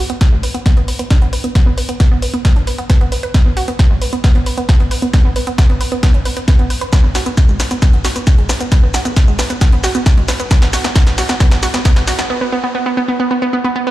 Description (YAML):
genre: uplifting trance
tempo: 134 BPM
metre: 4/4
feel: straight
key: unclear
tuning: A4 = 444 Hz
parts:
  - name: wide unison pluck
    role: arpeggios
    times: 0.0-13.9 s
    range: G#3 to B4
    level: -19 LUFS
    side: right 2 dB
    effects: sidechain pumping, digital delay
  - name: punchy analog drum machine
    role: drums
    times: 0.1-12.3 s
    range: hi-hat, shaker, snare drum, toms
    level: -21 LUFS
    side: equal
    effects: high-pass filter on snare, sidechain pumping on hats, high-pass filter on hats, sidechain pumping on perc, high-pass filter on perc, sidechain pumping on toms, high-pass filter on toms, high-pass filter on room
  - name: electronic kick drum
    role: drums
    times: 0.2-11.9 s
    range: none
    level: -11 LUFS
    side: equal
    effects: none
room: digital ambience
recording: played on a big sound system in a bare room, large studio reverb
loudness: -11 LUFS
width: side -15 dB against mid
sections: 0.0-13.9 A section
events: build-up 0.0-13.9; drum fill 0.0-12.3; filter sweep on synth arpeggio sound 0.0-13.9; break 12.3-13.9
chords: none